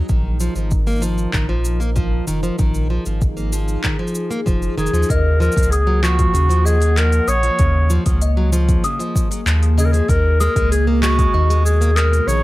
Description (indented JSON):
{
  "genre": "folktronica",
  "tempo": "96 BPM",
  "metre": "4/4",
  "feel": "straight",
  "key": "unclear",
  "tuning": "A4 = 438 Hz",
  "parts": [
    { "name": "warbly tape-like pad", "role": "sustained chords", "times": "0.0-12.4 s", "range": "Cb3 to Gb5", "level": "-27 LUFS", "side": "equal", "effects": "chorus, built-in reverb, phaser" },
    { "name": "picked plugged-in steel-string acoustic guitar", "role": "arpeggios", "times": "0.0-12.4 s", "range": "Db3 to Bb3", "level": "-24 LUFS", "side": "equal", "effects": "tape echo" },
    { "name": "warm sub bass", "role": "bass", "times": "0.0-12.4 s", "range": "F1 to Eb2", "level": "-17 LUFS", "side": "equal", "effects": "none" },
    { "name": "electronic kick drum", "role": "drums", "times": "0.1-11.3 s", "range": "none", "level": "-20 LUFS", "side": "equal", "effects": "none" },
    { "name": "organic electronic drum kit", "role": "drums", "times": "0.1-12.4 s", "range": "cabasa, handclaps, hi-hat", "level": "-26 LUFS", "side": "equal", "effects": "none" },
    { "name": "warm clarinet", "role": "melody", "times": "4.8-12.4 s", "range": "Gb4 to Db5", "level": "-20 LUFS", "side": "left 1 dB", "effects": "tape echo" },
    { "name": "music box", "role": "second line", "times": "5.1-12.3 s", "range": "Eb5 to Eb6", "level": "-28 LUFS", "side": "left 3 dB", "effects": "tape echo" }
  ],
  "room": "light reverb",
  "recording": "none",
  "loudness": "-15 LUFS",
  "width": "side -17 dB against mid",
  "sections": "0.0-5.1 A section; 5.1-12.4 B section",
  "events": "none",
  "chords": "0.1 Bbsus4; 5.1 Gbmaj7; 10.1 Abmadd9"
}